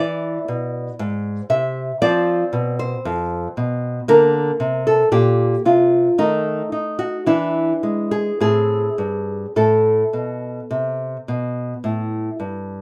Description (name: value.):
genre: classical, baroque-style dance for nylon-string guitar.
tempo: 51-59 BPM.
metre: 4/4.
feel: rubato.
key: A minor.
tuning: A4 = 439 Hz.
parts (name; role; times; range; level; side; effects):
nylon-string guitar; solo; 0.0-12.8 s; F2 to E5; -20 LUFS; equal; none.
room: light reverb.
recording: rough home demo mix.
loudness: -20 LUFS.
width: mono.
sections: 0.0-12.8 A section.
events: none.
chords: 0.0 E7; 2.0 F5; 4.1 Bb; 6.2 D#dim; 7.3 E7; 8.4 Am.